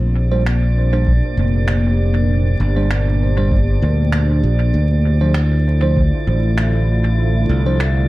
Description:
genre	ambient dub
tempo	98 BPM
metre	4/4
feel	swing 56% on 16ths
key	unclear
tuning	A4 = 444 Hz
part	warm analog pad	sustained chords	0.0-8.1 s	Bb2 to C5	-22 LUFS	equal	chorus
part	modern bright fingered electric bass	bass	0.0-8.1 s	F1 to D2	-15 LUFS	equal	none
part	drifting glass-harmonics texture	texture	0.0-8.1 s	D5	-29 LUFS	right 3 dB	chorus, built-in reverb
part	bell-like tine electric piano	stabs	0.3-7.8 s	F3 to C5	-25 LUFS	right 3 dB	phaser, dub echo
part	finger snaps	drums	0.5-7.9 s	none	-29 LUFS	right 1 dB	dub echo
part	electronic kick drum	drums	1.1-6.1 s	none	-19 LUFS	equal	overdrive
room	light reverb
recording	echo-heavy mix, vinyl crackle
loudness	-14 LUFS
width	side -18 dB against mid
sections	0.0-8.1 A section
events	none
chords	0.0 Bb69; 4.7 Dm7

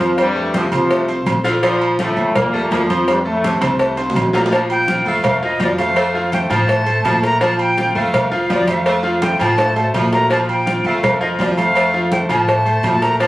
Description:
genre	latin, salsa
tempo	166 BPM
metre	4/4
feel	straight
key	unclear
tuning	A4 = 439 Hz
part	clear trombone section	melody	0.0-3.8 s	G2 to F4	-18 LUFS	equal	none
part	clear saxophone section	second line	0.0-13.3 s	C3 to A3	-23 LUFS	equal	none
part	bright grand piano	accompaniment	0.0-13.3 s	F3 to F6	-21 LUFS	left 1 dB	none
part	upright bass	bass	0.0-13.3 s	Bb1 to Bb2	-24 LUFS	equal	none
part	agogo bells and timbales	percussion	0.0-13.3 s	none	-23 LUFS	right 2 dB	none
part	congas	percussion	0.0-13.3 s	none	-25 LUFS	equal	none
part	cowbell	percussion	0.0-13.3 s	none	-22 LUFS	left 1 dB	none
part	silver concert flute	melody	4.4-13.3 s	D5 to Bb5	-18 LUFS	equal	none
room	moderate studio ambience, RT60 0.4 s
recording	recorded on a phone in the room, studio reverb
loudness	-14 LUFS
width	side -16 dB against mid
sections	0.0-4.5 A section; 4.5-13.3 B section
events	drum fill 3.6-4.5, 9.2-10.3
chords	0.0 Bbmaj7(no3); 6.0 Bb5

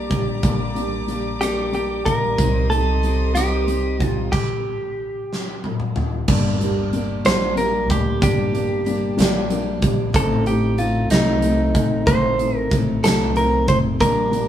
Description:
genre	six-eight pop ballad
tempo	62 BPM (dotted quarters)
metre	6/8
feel	straight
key	G minor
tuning	A4 = 441 Hz
part	felt-muted upright piano	accompaniment	0.0-14.5 s	G3 to Eb4	-24 LUFS	left 2 dB	none
part	dark studio string section	sustained chords	0.0-4.3 s	G4 to Eb6	-30 LUFS	left 2 dB	none
part	picked acoustic archtop guitar	arpeggios	0.0-14.5 s	G2 to A4	-30 LUFS	right 4 dB	none
part	upright bass	bass	0.0-14.5 s	F1 to D2	-24 LUFS	right 1 dB	none
part	huge arena drum kit	drums	0.1-14.5 s	crash cymbal, hi-hat, kick drum, rim click, snare drum, toms	-22 LUFS	equal	none
part	direct-recorded clean electric guitar	melody	1.4-14.5 s	Eb4 to C5	-22 LUFS	right 1 dB	none
room	light reverb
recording	band playing live in one room, small room ambience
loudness	-17 LUFS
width	side -10 dB against mid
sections	0.0-6.3 A section; 6.3-14.5 B section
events	stop 4.3-6.3; drum fill 5.3-6.3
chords	0.0 Gm/Bb; 2.4 Cm; 6.3 Gm; 10.1 Adim

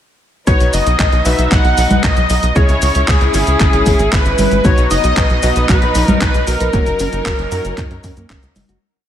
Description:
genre	italo disco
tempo	115 BPM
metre	4/4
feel	straight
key	B major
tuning	A4 = 440 Hz
part	wide unison lead	melody	0.5-8.5 s	G#4 to F#5	-17 LUFS	equal	wide subtle chorus, vintage 12-bit sampler grit, ping-pong delay
part	rich chamber string section	sustained chords	0.5-8.8 s	F#3 to A#4	-23 LUFS	equal	none
part	clear electric grand piano	stabs	0.5-8.8 s	B2 to C#5	-24 LUFS	left 4 dB	none
part	tight sequencer bass	bass	0.5-8.8 s	F#1 to F#2	-17 LUFS	equal	none
part	clean 12-bit digital drum machine	drums	0.5-8.8 s	cabasa, congas, handclaps, hi-hat	-20 LUFS	left 1 dB	gated reverb
part	electronic kick drum	drums	0.5-8.4 s	none	-15 LUFS	equal	none
part	mellow electric guitar	arpeggios	4.6-8.8 s	A#3 to D#5	-26 LUFS	right 2 dB	vintage 12-bit sampler grit, ping-pong delay
room	light reverb, digital ambience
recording	none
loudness	-11 LUFS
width	side -10 dB against mid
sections	0.5-8.8 chorus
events	fade-out 6.0-8.8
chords	0.5 B; 2.6 C#m; 4.6 B; 6.7 F#6

